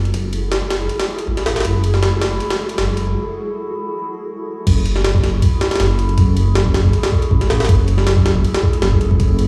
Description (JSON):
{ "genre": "drum and bass, jungle", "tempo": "159 BPM", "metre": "4/4", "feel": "swing 54% on 16ths", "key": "F# minor", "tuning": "A4 = 441 Hz", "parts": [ { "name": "granular cloud pad", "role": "sustained chords", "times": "0.0-9.5 s", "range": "E4 to A4", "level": "-27 LUFS", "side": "equal", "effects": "built-in reverb, vintage 12-bit sampler grit" }, { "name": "dark detuned saw bass", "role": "bass", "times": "0.0-9.5 s", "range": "F#1 to A1", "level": "-19 LUFS", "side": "equal", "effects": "none" }, { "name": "jungle sampler-style drum kit", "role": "drums", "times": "0.1-9.5 s", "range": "crash cymbal, kick drum, ride cymbal, snare drum", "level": "-19 LUFS", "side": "equal", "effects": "high-pass filter on cymbals, high-pass filter on kick, high-pass filter on snare, high-pass filter on hats, high-pass filter on room" } ], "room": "light reverb", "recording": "played on a big sound system in a bare room, stone room reverb, small room ambience", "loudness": "-17 LUFS", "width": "mono", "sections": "0.0-4.7 A section; 4.7-9.5 B section", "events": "build-up 0.0-4.7; break 3.2-4.7; drop 4.7-9.5", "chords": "0.0 F#m9" }